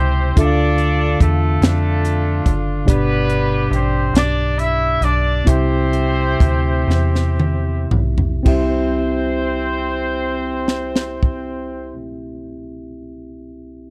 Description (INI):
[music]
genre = slow gospel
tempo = 36-48 BPM (dotted quarters)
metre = 6/8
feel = straight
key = C major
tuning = A4 = 439 Hz
[part]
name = clear horn section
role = melody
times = 0.0-11.9 s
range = A3 to E5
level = -24 LUFS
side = equal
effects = none
[part]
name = mellow tine electric piano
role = accompaniment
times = 0.0-13.9 s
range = C2 to G5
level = -23 LUFS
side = equal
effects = none
[part]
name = metallic FM bass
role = bass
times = 0.0-11.9 s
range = F#1 to F2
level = -22 LUFS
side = equal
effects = none
[part]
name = crisp fusion drum kit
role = drums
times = 0.4-11.5 s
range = crash cymbal, hi-hat, kick drum, snare drum, toms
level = -19 LUFS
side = equal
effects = none
[sound]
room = studio reverb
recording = dry, close 1970s-style studio recording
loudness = -18 LUFS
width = mono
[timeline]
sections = 0.0-8.5 A section; 8.5-11.8 B section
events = slowing down 2.9-8.5; drum fill 6.9-8.5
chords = 0.4 Dm; 2.9 G; 5.5 C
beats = | 0.37 1.62 | 2.88 4.14 | 5.47 6.89 | 8.46 10.12